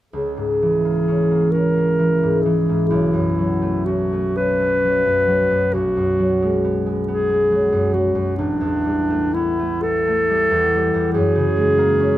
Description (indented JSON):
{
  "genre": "classical, impressionist duo for clarinet and harp",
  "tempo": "39-48 BPM (dotted quarters)",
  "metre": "6/8",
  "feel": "rubato",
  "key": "unclear",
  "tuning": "A4 = 444 Hz",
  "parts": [
    { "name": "warm clarinet", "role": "melody", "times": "0.1-12.2 s", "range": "D4 to B4", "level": "-19 LUFS", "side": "equal", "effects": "none" },
    { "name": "concert harp", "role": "accompaniment", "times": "0.1-12.2 s", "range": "A1 to C#4", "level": "-19 LUFS", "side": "equal", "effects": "none" }
  ],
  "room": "light reverb",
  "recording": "close, detailed microphones",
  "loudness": "-16 LUFS",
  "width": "side -14 dB against mid",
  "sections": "0.1-12.2 A section",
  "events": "none",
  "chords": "0.1 C#m6; 2.9 B9sus4; 5.7 B5; 8.4 A9sus4; 11.1 F#add9"
}